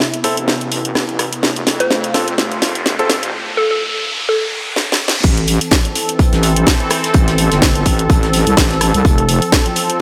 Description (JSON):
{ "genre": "bass house", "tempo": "126 BPM", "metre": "4/4", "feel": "swing 56% on 16ths", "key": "A minor", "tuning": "A4 = 438 Hz", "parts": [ { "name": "sweeping resonant pad", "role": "sustained chords", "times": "0.0-10.0 s", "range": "C3 to A4", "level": "-23 LUFS", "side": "equal", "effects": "chorus, sidechain pumping" }, { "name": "house drum kit", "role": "drums", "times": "0.0-10.0 s", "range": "crash cymbal, hi-hat, rim click, snare drum", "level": "-19 LUFS", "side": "equal", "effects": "none" }, { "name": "riser", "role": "sound effects", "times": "0.0-5.2 s", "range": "none", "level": "-26 LUFS", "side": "equal", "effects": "none" }, { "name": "clear grand piano", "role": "stabs", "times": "0.2-3.1 s", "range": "C4 to A4", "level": "-24 LUFS", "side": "equal", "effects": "sidechain pumping, low-pass filter, tape echo" }, { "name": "wobble bass", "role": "bass", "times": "0.4-9.4 s", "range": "F1 to F2", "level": "-20 LUFS", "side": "equal", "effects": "chorus, tube saturation, sidechain pumping, high-pass filter" }, { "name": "hollow square pluck", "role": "melody", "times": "1.8-5.0 s", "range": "A4 to C5", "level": "-22 LUFS", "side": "equal", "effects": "chorus, tape echo" }, { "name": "electronic kick drum", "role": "drums", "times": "5.2-9.6 s", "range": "none", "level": "-16 LUFS", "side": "equal", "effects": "none" }, { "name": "loose indie drum kit", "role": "drums", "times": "5.2-9.9 s", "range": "hi-hat, snare drum", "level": "-29 LUFS", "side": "equal", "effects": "none" } ], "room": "moderate lush hall reverb, RT60 1.8 s, digital ambience", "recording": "high-pass filter", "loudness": "-15 LUFS", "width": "mono", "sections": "0.0-5.2 A section; 5.2-10.0 B section", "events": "build-up 0.0-5.2; drum fill 0.0-3.3, 4.8-5.2; riser 0.0-5.2; filter sweep on analog synth pad 0.0-5.2; filter sweep 0.0-5.2; drop 5.2-10.0", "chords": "0.0 Am; 1.4 F; 5.2 Am; 9.0 F", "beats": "0.00 0.48 0.95 | 1.43 1.91 2.38 2.86 | 3.33 3.81 4.29 4.76 | 5.24 5.72 6.19 6.67 | 7.14 7.62 8.10 8.57 | 9.05 9.53 10.00" }